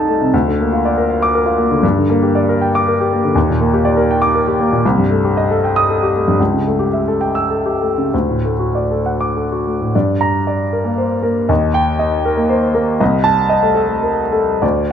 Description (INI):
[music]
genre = classical, romantic character piece for solo piano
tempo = 64-82 BPM (dotted quarters)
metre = 6/8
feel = rubato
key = unclear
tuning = A4 = 438 Hz
[part]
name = clear grand piano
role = solo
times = 0.0-14.9 s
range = C2 to E6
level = -13 LUFS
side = equal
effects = none
[sound]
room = moderate recital hall reverb, RT60 1.4 s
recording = close, detailed microphones, faint mains hum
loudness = -13 LUFS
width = side -8 dB against mid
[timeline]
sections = 0.0-9.9 A section; 9.9-14.9 B section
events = none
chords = 0.3 Bb/D; 1.8 Gm; 3.3 Ebmaj7; 4.8 Am7b5/C; 6.4 A7/C#; 8.1 D; 9.9 Gm; 11.5 Eb; 13.0 Adim/C